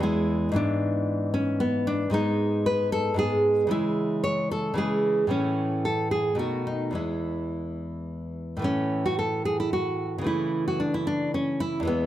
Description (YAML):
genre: classical, baroque-style dance for nylon-string guitar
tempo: 112 BPM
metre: 3/4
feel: rubato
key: E major, A major from 8.6 s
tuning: A4 = 440 Hz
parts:
  - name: nylon-string guitar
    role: solo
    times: 0.0-12.1 s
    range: E2 to C#5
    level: -24 LUFS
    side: equal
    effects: none
room: moderate recital hall reverb, RT60 1.6 s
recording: none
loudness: -24 LUFS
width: side -12 dB against mid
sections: 0.0-8.6 A section; 8.6-12.1 A section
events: none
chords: 0.0 E; 0.6 E/G#; 2.1 G#m; 3.7 C#m; 5.3 A; 6.4 B7; 7.0 E; 8.6 A5; 10.3 A/C#